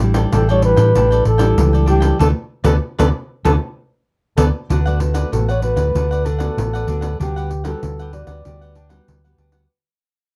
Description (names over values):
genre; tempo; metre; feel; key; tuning
samba and choro; 96 BPM; 4/4; straight; D major; A4 = 440 Hz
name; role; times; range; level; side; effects
cavaquinho; accompaniment; 0.0-9.7 s; D4 to G5; -30 LUFS; equal; none
nylon-string guitar; accompaniment; 0.0-9.7 s; A2 to F#4; -26 LUFS; equal; none
hollow-body short-scale fingered electric bass; bass; 0.0-9.7 s; A1 to A2; -19 LUFS; equal; none
pandeiro; percussion; 0.0-9.7 s; none; -27 LUFS; equal; none
trumpet with bucket mute; melody; 0.3-9.0 s; G4 to D5; -22 LUFS; equal; none
room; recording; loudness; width
light reverb; dark, warm production; -17 LUFS; mono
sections
0.0-4.7 A section; 4.7-9.7 B section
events
band accent 2.2-4.7; fade-out 4.7-9.7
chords
0.0 A7sus4; 2.2 D5; 4.7 D6; 7.2 Gmaj7/D